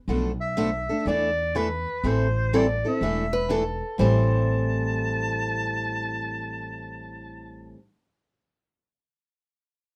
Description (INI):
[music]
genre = acoustic string swing (jazz manouche)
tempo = 122 BPM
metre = 4/4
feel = swing 64% on 8ths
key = A minor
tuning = A4 = 441 Hz
[part]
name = picked steel-string acoustic guitar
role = accompaniment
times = 0.1-7.8 s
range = A2 to A4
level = -29 LUFS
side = equal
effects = none
[part]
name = upright bass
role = bass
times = 0.1-7.7 s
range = E1 to E2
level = -30 LUFS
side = equal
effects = none
[part]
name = clear clarinet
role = melody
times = 0.4-7.8 s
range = B4 to A5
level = -31 LUFS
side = equal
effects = none
[part]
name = picked old ladder-braced acoustic guitar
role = second line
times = 3.3-7.7 s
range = A4 to C5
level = -32 LUFS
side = equal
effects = none
[sound]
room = moderate small room ambience, RT60 0.5 s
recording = dark, warm production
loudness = -25 LUFS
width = mono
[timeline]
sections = 0.1-4.0 A section; 4.0-7.9 B section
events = none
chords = 0.1 Bm7b5; 1.1 E7sus4; 2.0 Am7; 3.0 E7sus4; 4.0 Am7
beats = | 0.08 0.57 1.06 1.55 | 2.04 2.53 3.02 3.52 | 4.01 4.50 4.99 5.48 | 5.97 6.47 6.96 7.45